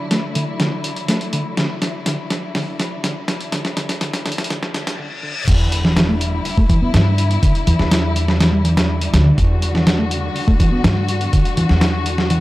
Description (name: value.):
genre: breakbeat, breaks.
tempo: 123 BPM.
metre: 4/4.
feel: straight.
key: E minor.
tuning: A4 = 440 Hz.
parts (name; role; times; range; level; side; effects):
warm studio string section; sustained chords; 0.0-12.4 s; D3 to F#4; -25 LUFS; left 2 dB; vintage 12-bit sampler grit, sidechain pumping, low-pass filter.
hollow-body short-scale picked electric bass; riff; 0.1-12.4 s; D3 to E4; -22 LUFS; equal; tube saturation, analog delay.
dusty soul sampler-style drum kit; drums; 0.1-12.4 s; crash cymbal, hi-hat, kick drum, snare drum; -19 LUFS; equal; overdrive.
reverse cymbal and impact; sound effects; 4.8-7.4 s; none; -30 LUFS; left 1 dB; none.
upright bass; bass; 5.5-12.4 s; D2 to G2; -17 LUFS; equal; none.
room: light reverb.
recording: dry, gritty hardware recording, high-pass filter.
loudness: -15 LUFS.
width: side -18 dB against mid.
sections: 0.0-5.5 A section; 5.5-12.4 B section.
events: build-up 0.0-5.5; drum fill 0.0-5.0; filter sweep on picked electric bass 0.0-5.5; filter sweep 0.0-5.5; reverse cymbal 4.8-5.5; drop 5.5-12.4; impact 5.5-7.4.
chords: 0.0 Dadd9; 5.5 Em7.